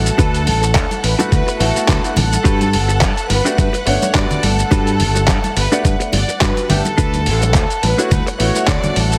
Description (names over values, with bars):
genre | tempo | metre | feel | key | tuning
nu-disco, nu disco | 106 BPM | 4/4 | swing 56% on 16ths | D major | A4 = 439 Hz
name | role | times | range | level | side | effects
rich studio violin section | melody | 0.0-9.2 s | A4 to D5 | -24 LUFS | equal | delay
clear grand piano | accompaniment | 0.0-9.2 s | A3 to F#5 | -25 LUFS | equal | sidechain pumping
clear studio string section | sustained chords | 0.0-9.2 s | F#5 to F#6 | -32 LUFS | equal | vintage 12-bit sampler grit, sidechain pumping
modern bright fingered electric bass | bass | 0.0-9.1 s | G1 to G2 | -20 LUFS | equal | none
dusty soul sampler-style drum kit | drums | 0.1-9.2 s | handclaps, hi-hat, shaker | -23 LUFS | equal | overdrive
direct-recorded clean electric guitar | riff | 0.2-9.0 s | D4 to D5 | -25 LUFS | equal | subtle chorus
electronic kick drum | drums | 0.2-8.8 s | none | -19 LUFS | equal | overdrive
congas | percussion | 0.2-9.1 s | none | -26 LUFS | equal | none
room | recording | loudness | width
light reverb, studio reverb | heavily compressed radio sound | -15 LUFS | mono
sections
0.0-9.2 A section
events
none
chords
0.0 D6; 2.5 Gmaj7; 7.0 D6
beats
| 0.19 0.75 1.32 1.89 | 2.45 3.02 3.58 4.15 | 4.72 5.28 5.85 6.41 | 6.98 7.55 8.11 8.68